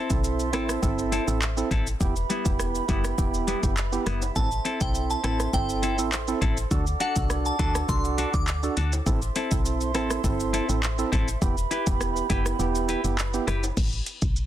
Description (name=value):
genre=dancehall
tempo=102 BPM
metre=4/4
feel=straight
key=A dorian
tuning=A4 = 439 Hz
part: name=breathy mellow flute section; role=sustained chords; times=0.0-13.8 s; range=G4 to D6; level=-34 LUFS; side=right 5 dB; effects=sidechain pumping
part: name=clean electric guitar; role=arpeggios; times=0.0-13.6 s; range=G3 to B4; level=-31 LUFS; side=left 4 dB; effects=none
part: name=percussive organ stab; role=accompaniment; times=0.1-13.5 s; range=B3 to A4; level=-30 LUFS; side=right 5 dB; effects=chorus, sidechain pumping
part: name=woody FM bass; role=bass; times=0.1-14.5 s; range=E1 to D2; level=-28 LUFS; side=equal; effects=none
part: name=afro-pop drum kit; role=drums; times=0.1-14.5 s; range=crash cymbal, handclaps, hi-hat, kick drum, rim click, shaker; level=-28 LUFS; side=equal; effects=none
part: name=maracas and timbales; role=percussion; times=0.1-13.8 s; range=none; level=-40 LUFS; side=left 7 dB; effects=none
part: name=glassy synth bell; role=melody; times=4.4-8.5 s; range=F#5 to D6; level=-31 LUFS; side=left 1 dB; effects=chorus, tape echo
room=little or no reverb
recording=dense, heavily limited modern master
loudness=-23 LUFS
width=side -12 dB against mid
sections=0.0-13.8 A section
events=kick muted 12.6-13.8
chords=0.0 Am; 2.0 Em; 4.4 Am; 6.7 D; 9.1 Am; 11.4 Em; 13.8 Gadd9 (rootless)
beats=0.24 0.83 1.42 | 2.01 2.60 3.18 3.77 | 4.36 4.95 5.54 6.12 | 6.71 7.30 7.89 8.48 | 9.06 9.65 10.24 10.83 | 11.42 12.01 12.60 13.18 | 13.77 14.36